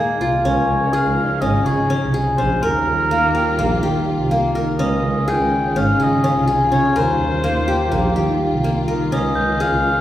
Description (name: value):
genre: contemporary instrumental, chamber music in an uneven meter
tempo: 249 BPM (eighths)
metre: 9/8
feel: straight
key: unclear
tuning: A4 = 438 Hz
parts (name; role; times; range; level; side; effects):
- warm symphonic string section; sustained chords; 0.0-10.0 s; Bb2 to F4; -25 LUFS; equal; none
- qanun; arpeggios; 0.0-10.0 s; Bb3 to Bb4; -19 LUFS; left 2 dB; none
- crotales; texture; 0.0-0.7, 9.4-10.0 s; G6 to Ab6; -29 LUFS; right 2 dB; none
- warm double bass; bass; 0.2-9.9 s; Ab1 to Eb3; -21 LUFS; right 1 dB; none
- mellow oboe; melody; 0.4-10.0 s; Bb4 to G5; -22 LUFS; right 1 dB; none
room: wet recital hall reverb, RT60 1.9 s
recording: heard from further back in the room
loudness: -16 LUFS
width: side -12 dB against mid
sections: 0.5-10.0 A section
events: none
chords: 0.5 Dbadd9; 2.6 Ebadd9; 4.8 Dbadd9; 7.0 Ebadd9; 9.1 Dbadd9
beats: 0.21 | 0.45 0.69 0.94 1.18 1.42 1.66 1.90 2.14 2.38 | 2.62 2.87 3.11 3.35 3.59 3.83 4.07 4.31 4.55 | 4.79 5.03 5.27 5.51 5.75 6.00 6.24 6.48 6.72 | 6.96 7.20 7.44 7.68 7.92 8.16 8.40 8.64 8.88 | 9.12 9.36 9.60 9.84